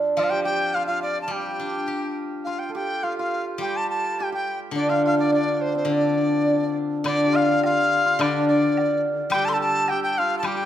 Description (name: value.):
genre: chinese traditional, Chinese chamber ensemble.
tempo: 106 BPM.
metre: 2/4.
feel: rubato.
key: D yu mode.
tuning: A4 = 440 Hz.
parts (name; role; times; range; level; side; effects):
hammered dulcimer; second line; 0.0-10.7 s; C4 to A4; -25 LUFS; right 4 dB; none.
dizi; melody; 0.2-10.7 s; C5 to C6; -24 LUFS; left 1 dB; none.
steel-string zither; accompaniment; 0.2-10.7 s; D3 to G4; -26 LUFS; left 4 dB; none.
woodblock; percussion; 7.1-10.6 s; none; -31 LUFS; left 3 dB; none.
room: moderate recital hall reverb, RT60 1.5 s.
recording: none.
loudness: -20 LUFS.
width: side -11 dB against mid.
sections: 0.0-7.0 A section; 7.0-10.7 B section.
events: none.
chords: none.